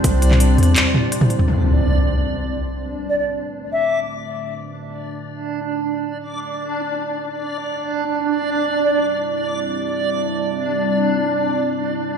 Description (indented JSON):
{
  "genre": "half-time drum and bass",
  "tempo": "free time",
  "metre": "none",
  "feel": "none",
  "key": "B phrygian",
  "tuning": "A4 = 439 Hz",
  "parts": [
    { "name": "deep dark ambient pad", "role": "sustained chords", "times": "0.0-12.2 s", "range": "G3 to D5", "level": "-25 LUFS", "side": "left 1 dB", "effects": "chorus, built-in reverb, sidechain pumping" },
    { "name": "long sustained 808-style bass", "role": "bass", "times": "0.0-0.8 s", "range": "C2 to E2", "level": "-14 LUFS", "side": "equal", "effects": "none" },
    { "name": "drum and bass drum kit", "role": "drums", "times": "0.0-1.5 s", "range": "handclaps, hi-hat, toms", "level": "-18 LUFS", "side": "equal", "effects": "none" },
    { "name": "backwards swelling texture", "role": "texture", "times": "0.0-12.2 s", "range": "D4 to D5", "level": "-22 LUFS", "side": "right 2 dB", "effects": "built-in reverb" },
    { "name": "impact", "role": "sound effects", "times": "1.5-2.9 s", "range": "none", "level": "-19 LUFS", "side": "equal", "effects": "none" },
    { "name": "silver concert flute", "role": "melody", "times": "3.1-4.0, 8.8-9.0 s", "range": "D5 to E5", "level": "-22 LUFS", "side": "left 1 dB", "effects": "ping-pong delay" }
  ],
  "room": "moderate digital room reverb, RT60 0.9 s",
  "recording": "played on a big sound system in a bare room, stone room reverb",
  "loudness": "-18 LUFS",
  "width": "side -6 dB against mid",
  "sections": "0.0-1.5 A section; 1.5-12.2 B section",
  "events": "break 0.8-1.5; impact 1.5-2.9; filter sweep on ambient pad 1.5-12.2",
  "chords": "0.0 C; 1.5 Bm7; 7.2 C"
}